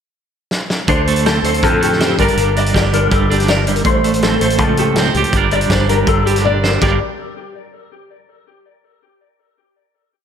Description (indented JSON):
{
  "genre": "math rock and midwest emo",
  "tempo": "162 BPM",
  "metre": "4/4",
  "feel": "straight",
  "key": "G minor",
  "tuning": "A4 = 441 Hz",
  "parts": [
    { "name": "loose indie drum kit", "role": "drums", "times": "0.5-6.9 s", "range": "crash cymbal, hi-hat, kick drum, snare drum, toms", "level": "-19 LUFS", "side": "equal", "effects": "none" },
    { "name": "twelve-string electric guitar", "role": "accompaniment", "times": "0.9-7.0 s", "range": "G2 to C5", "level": "-17 LUFS", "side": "right 6 dB", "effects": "tremolo" },
    { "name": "mellow electric guitar", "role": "arpeggios", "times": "0.9-7.0 s", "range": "G4 to Eb5", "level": "-18 LUFS", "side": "left 6 dB", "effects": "ensemble chorus, tape echo" },
    { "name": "growling fingered electric bass", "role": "bass", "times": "0.9-7.0 s", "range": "G1 to F2", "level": "-18 LUFS", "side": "equal", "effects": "overdrive" }
  ],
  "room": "moderate plate reverb, RT60 1.9 s, small room ambience",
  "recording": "dreamy mix soaked in reverb",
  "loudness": "-12 LUFS",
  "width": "side -8 dB against mid",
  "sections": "0.0-0.9 pickup bar; 0.9-6.8 A section; 6.8-8.3 final chord",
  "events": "drum fill 0.5-0.9, 6.4-6.8",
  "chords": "0.0 N.C.; 0.9 Dm7; 2.2 Gm7; 3.8 A7alt; 5.3 Gm9; 6.8 G5",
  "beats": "0.14 0.51 | 0.88 1.25 1.62 1.99 | 2.36 2.73 3.11 3.48 | 3.85 4.22 4.59 4.96 | 5.33 5.70 6.07 6.44 | 6.81"
}